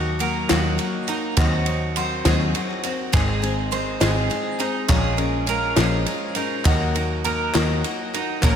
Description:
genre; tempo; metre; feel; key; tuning
indie folk with a building arrangement; 68 BPM (dotted quarters); 6/8; straight; unclear; A4 = 440 Hz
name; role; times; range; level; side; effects
picked twelve-string acoustic guitar; accompaniment; 0.0-8.6 s; Ab2 to Bb4; -26 LUFS; left 7 dB; slapback echo
warm upright piano; accompaniment; 0.0-8.6 s; Ab1 to F5; -30 LUFS; right 4 dB; slapback echo
bowl-back mandolin; arpeggios; 0.0-8.6 s; Eb4 to C5; -27 LUFS; right 5 dB; none
picked electric bass; bass; 0.0-8.6 s; Ab1 to Eb2; -24 LUFS; equal; none
compact cocktail drum kit; drums; 0.2-8.6 s; kick drum, ride cymbal, snare drum; -25 LUFS; equal; none
group handclap; percussion; 0.5-8.6 s; none; -33 LUFS; left 2 dB; none
room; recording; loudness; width
moderate lush hall reverb, RT60 1.9 s, small room ambience; big arena sound; -19 LUFS; side -8 dB against mid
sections
0.0-8.6 A section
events
none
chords
0.0 Ebm; 1.4 Cdim/Eb; 3.1 Ab; 4.9 Bbm7; 6.7 Ebm

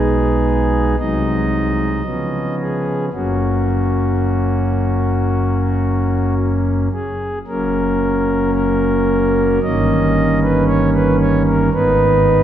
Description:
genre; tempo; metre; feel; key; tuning
classical, chorale-style piece for pipe organ; 56 BPM; 4/4; straight; F# major; A4 = 440 Hz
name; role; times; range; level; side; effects
pipe organ, principal; solo; 0.0-12.4 s; F#1 to D#5; -14 LUFS; equal; none
room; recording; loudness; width
wet church reverb, RT60 2.5 s; none; -14 LUFS; side -10 dB against mid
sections
0.0-7.5 A section; 7.5-12.4 A section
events
none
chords
0.0 G#m/B; 1.0 G#7/B#; 2.1 C#7; 3.1 F#; 9.6 D#7/G; 11.7 G#m

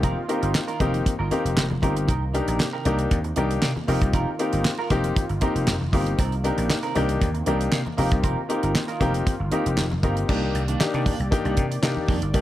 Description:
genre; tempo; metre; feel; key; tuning
early-eighties boogie funk; 117 BPM; 4/4; straight; unclear; A4 = 440 Hz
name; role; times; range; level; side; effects
warm baby grand piano; accompaniment; 0.0-12.4 s; Bb3 to G4; -26 LUFS; left 4 dB; none
warm analog pad; sustained chords; 0.0-12.4 s; C3 to D5; -34 LUFS; right 1 dB; chorus
clean electric guitar; riff; 0.0-12.4 s; Eb3 to Bb4; -31 LUFS; right 4 dB; analog chorus
vintage slap bass; bass; 0.0-12.4 s; F1 to C3; -26 LUFS; equal; none
damped 70s drum kit; drums; 0.0-12.4 s; crash cymbal, handclaps, hi-hat, kick drum, snare drum; -25 LUFS; right 1 dB; none
congas; percussion; 0.0-12.4 s; none; -34 LUFS; left 2 dB; none
room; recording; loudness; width
small room ambience; none; -21 LUFS; side -14 dB against mid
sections
0.0-10.3 A section; 10.3-12.4 B section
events
none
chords
0.0 F7sus4; 2.1 Cm7; 3.9 F7sus4; 6.2 Cm7; 8.0 F7sus4; 10.3 F9sus4/C (rootless)

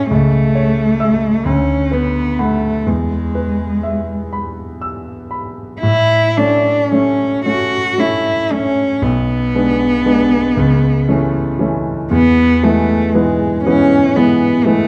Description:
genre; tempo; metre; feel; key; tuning
classical, romantic duo for cello and grand piano; 36-46 BPM (dotted quarters); 6/8; rubato; A major; A4 = 440 Hz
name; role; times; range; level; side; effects
rich cello; melody; 0.0-14.9 s; G#3 to F#4; -17 LUFS; equal; none
clear grand piano; accompaniment; 0.0-14.9 s; B1 to E6; -18 LUFS; equal; none
room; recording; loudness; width
moderate recital hall reverb, RT60 1.5 s; dark, warm production; -15 LUFS; mono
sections
0.0-5.8 A section; 5.8-14.9 B section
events
none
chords
0.1 A/C#; 1.5 Bm/D; 2.9 E; 5.8 A; 9.0 Bm6; 10.6 A/C#; 12.1 E

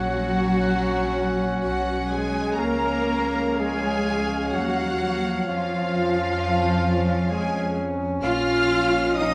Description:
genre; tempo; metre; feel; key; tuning
classical, slow romantic movement for symphony orchestra; 64 BPM; 3/4; rubato; unclear; A4 = 442 Hz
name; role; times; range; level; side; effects
warm symphonic violin section; melody; 0.0-9.3 s; E#5 to F6; -34 LUFS; equal; none
clear oboe; second line; 0.0-9.3 s; E#5 to F#5; -37 LUFS; equal; none
concert flute; second line; 0.0-9.3 s; E#5 to F6; -34 LUFS; equal; none
warm clarinet; second line; 0.0-9.3 s; Bb4 to C#5; -38 LUFS; equal; none
warm symphonic violin section; second line; 0.0-9.3 s; E#4 to F5; -36 LUFS; equal; none
rich symphonic viola section; accompaniment; 0.0-9.3 s; E#4 to F5; -36 LUFS; equal; none
warm bassoon; accompaniment; 0.0-9.3 s; C#4; -35 LUFS; equal; none
warm French horn section; sustained chords; 0.0-9.3 s; E#3 to F4; -32 LUFS; equal; none
warm trombone section; sustained chords; 0.0-9.3 s; E#3 to C#4; -33 LUFS; equal; none
dark trumpet section; stabs; 0.0-9.3 s; E#4 to F5; -36 LUFS; equal; none
rich symphonic cello section; bass; 0.0-9.3 s; E#3 to F4; -31 LUFS; equal; none
rich symphonic double bass section; bass; 0.0-9.3 s; A#1 to E#2; -32 LUFS; equal; none
room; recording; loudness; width
wet recital hall reverb, RT60 1.6 s; dark, warm production; -23 LUFS; mono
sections
0.0-9.3 A section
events
none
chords
0.0 F#/A#; 2.6 C#; 5.5 C#/E#; 8.2 Bbm

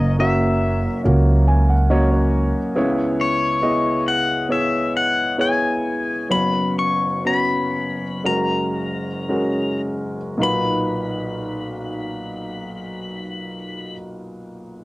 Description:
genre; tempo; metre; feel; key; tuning
acoustic folk-pop ballad; 53-70 BPM; 4/4; straight; B major; A4 = 440 Hz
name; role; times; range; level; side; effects
pedal steel guitar; melody; 0.0-14.0 s; C#5 to C#6; -22 LUFS; left 3 dB; cassette tape
clear grand piano; accompaniment; 0.0-14.8 s; F#1 to G#5; -22 LUFS; equal; cassette tape
upright bass; bass; 0.0-2.5 s; F#1 to C#2; -16 LUFS; right 1 dB; none
room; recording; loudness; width
moderate small room reverb, RT60 0.5 s; home recording on cassette; -18 LUFS; side -19 dB against mid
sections
0.0-10.4 A section; 10.4-14.8 B section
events
slowing down 2.8-10.4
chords
0.0 F#; 2.8 C#m7; 6.3 F#sus4; 8.2 F#add9; 10.4 Bmaj7

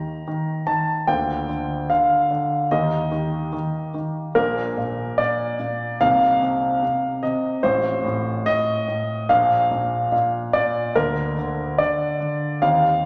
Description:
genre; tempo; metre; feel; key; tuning
classical-period piano sonatina; 73 BPM; 4/4; rubato; Bb major; A4 = 443 Hz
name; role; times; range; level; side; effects
clear grand piano; solo; 0.0-13.1 s; A1 to Bb5; -22 LUFS; equal; none
room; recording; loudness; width
wet recital hall reverb, RT60 1.6 s; none; -22 LUFS; mono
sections
0.0-13.1 A section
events
none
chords
0.0 Eb5; 1.1 Bb/D; 2.7 Eb; 4.4 Bb; 6.0 Cm7; 7.6 F/A; 9.3 Bb; 11.0 Bb/D

